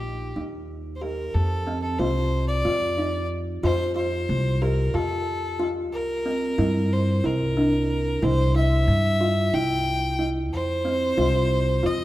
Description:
contemporary instrumental, chamber music in an uneven meter; 183 BPM (eighths); 7/8; straight; A4 = 439 Hz
bright fiddle; melody; 0.0-12.0 s; G4 to G5; -27 LUFS; equal
kalimba; arpeggios; 0.0-12.0 s; C4 to G4; -27 LUFS; equal
upright bass; bass; 0.0-12.0 s; Bb1 to G2; -25 LUFS; equal
moderate recital hall reverb, RT60 1.7 s; -21 LUFS; side -15 dB against mid
0.0-1.3 A section; 1.3-12.0 B section
0.0 Eb; 1.3 F; 5.9 C7; 10.5 F5
0.03 0.36 0.69 1.02 | 1.34 1.67 2.00 2.33 2.66 2.98 3.31 | 3.64 3.97 4.29 4.62 4.95 5.27 5.60 | 5.93 6.26 6.58 6.91 7.24 7.57 7.89 | 8.22 8.55 8.87 9.20 9.53 9.86 10.19 | 10.51 10.84 11.17 11.50 11.82

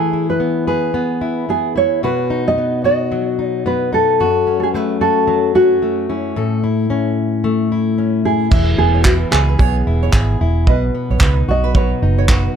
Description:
acoustic pop; 111 BPM; 4/4; swing 60% on 16ths; E major; A4 = 440 Hz
nylon-string guitar; melody; 0.0-12.5 s; E4 to D#5; -18 LUFS; right 2 dB; plate reverb
fingerpicked plugged-in steel-string acoustic guitar; accompaniment; 0.0-12.6 s; F#2 to A4; -18 LUFS; left 4 dB
fingerpicked steel-string acoustic guitar; arpeggios; 8.5-12.4 s; B4 to E5; -26 LUFS; right 8 dB
vintage muted fingered electric bass; bass; 8.5-12.5 s; E1 to C#2; -16 LUFS; right 1 dB
cloth-damped thuddy drum kit; drums; 8.5-12.4 s; crash cymbal, handclaps, kick drum; -15 LUFS; right 1 dB
light reverb; -14 LUFS; side -8 dB against mid
0.0-8.5 A section; 8.5-12.6 B section
0.0 E; 2.0 B; 4.2 F#m; 6.4 A; 8.5 E; 10.7 B
0.40 0.94 1.48 | 2.02 2.57 3.11 3.65 | 4.19 4.73 5.27 5.81 | 6.35 6.89 7.43 7.97 | 8.51 9.05 9.59 10.13 | 10.67 11.21 11.75 12.29

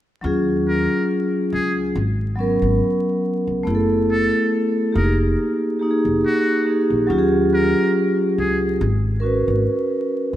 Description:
hip hop; 70 BPM; 4/4; swing 55% on 16ths; Eb minor; A4 = 442 Hz
vibraphone with medium mallets; accompaniment; 0.2-10.4 s; Gb3 to Cb5; -18 LUFS; equal
upright bass; bass; 0.2-10.4 s; F1 to Eb2; -23 LUFS; equal
trumpet with metal mute; melody; 0.7-8.6 s; Gb4 to Bb4; -27 LUFS; equal
moderate lush hall reverb, RT60 2.2 s; rough home demo mix, vinyl crackle; -17 LUFS; side -12 dB against mid
0.2-10.4 A section
0.2 Ebm11; 1.9 Abm11; 3.7 Gbm7; 4.9 Fm11; 7.1 Ebm11; 8.8 Abm11
| 0.23 1.09 1.95 2.81 | 3.66 4.52 5.38 6.24 | 7.09 7.95 8.81 9.66

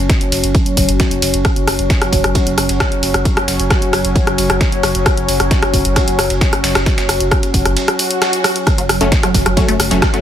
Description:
driving peak-time techno; 133 BPM; 4/4; straight; F# minor; A4 = 440 Hz
saturated sub bass; bass; 0.0-10.2 s; F#1; -20 LUFS; equal; tube saturation, sidechain pumping, low-pass filter
analog drone; drone; 0.0-10.2 s; F#3 to C#4; -19 LUFS; left 1 dB; chorus, sidechain pumping
ethereal airy pad; texture; 0.0-10.2 s; F#4 to A5; -26 LUFS; equal; ensemble chorus, built-in reverb, sidechain pumping
dusty soul sampler-style drum kit; drums; 0.1-10.1 s; ride cymbal, snare drum; -25 LUFS; right 2 dB; sidechain pumping on cymbals, high-pass filter on cymbals, high-pass filter on snare, high-pass filter on room
electronic kick drum; drums; 0.1-10.1 s; -16 LUFS; equal
punchy analog drum machine; drums; 0.1-10.2 s; hi-hat, rim click; -18 LUFS; equal; sidechain pumping on hats
swell; sound effects; 8.0-8.7 s; -23 LUFS; right 2 dB
resonant blip pluck; riff; 8.8-10.2 s; F#3 to A3; -19 LUFS; right 2 dB; phaser, overdrive, sidechain pumping, ping-pong delay
supersaw stab; stabs; 9.0-10.2 s; F#3 to C#4; -19 LUFS; left 3 dB; cassette tape, sidechain pumping, digital delay
little or no reverb; -12 LUFS; side -10 dB against mid
0.0-10.2 A section
fade-in on ambient pad 0.0-10.2; swell 8.0-8.7
0.0 F#m
0.10 0.55 1.00 | 1.45 1.90 2.35 2.80 | 3.25 3.71 4.16 4.61 | 5.06 5.51 5.96 6.41 | 6.86 7.31 7.76 8.22 | 8.67 9.12 9.57 10.02

